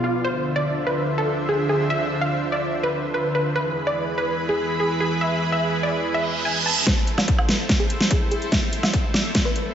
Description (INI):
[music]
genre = heavy wobble dubstep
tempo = 145 BPM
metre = 4/4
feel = half-time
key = A harmonic minor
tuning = A4 = 440 Hz
[part]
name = wide unison pluck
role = melody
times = 0.0-9.6 s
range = F4 to A5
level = -25 LUFS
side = equal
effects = tape echo
[part]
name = supersaw pad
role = sustained chords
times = 0.0-9.7 s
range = B2 to B5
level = -25 LUFS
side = right 1 dB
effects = lush chorus, sidechain pumping, low-pass filter
[part]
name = reverse cymbal and riser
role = sound effects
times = 6.2-9.7 s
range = none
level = -26 LUFS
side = right 5 dB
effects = none
[part]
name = dubstep drum kit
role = drums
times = 6.9-9.6 s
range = hi-hat, snare drum, woodblock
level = -22 LUFS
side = equal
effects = studio ambience
[part]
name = electronic kick drum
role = drums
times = 6.9-9.4 s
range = none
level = -22 LUFS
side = equal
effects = distortion, studio ambience
[sound]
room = wet lush hall reverb, RT60 2.0 s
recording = dreamy mix soaked in reverb, nothing above 7.7 kHz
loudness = -20 LUFS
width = side -9 dB against mid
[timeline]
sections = 0.0-6.9 A section; 6.9-9.7 B section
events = filter sweep on supersaw synth 0.0-6.9; reverse cymbal 6.2-6.9; build-up 6.9-9.7; drum fill 6.9-9.7; filter sweep on synth pluck 6.9-9.7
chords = 0.2 Dm7; 3.6 E; 6.9 Am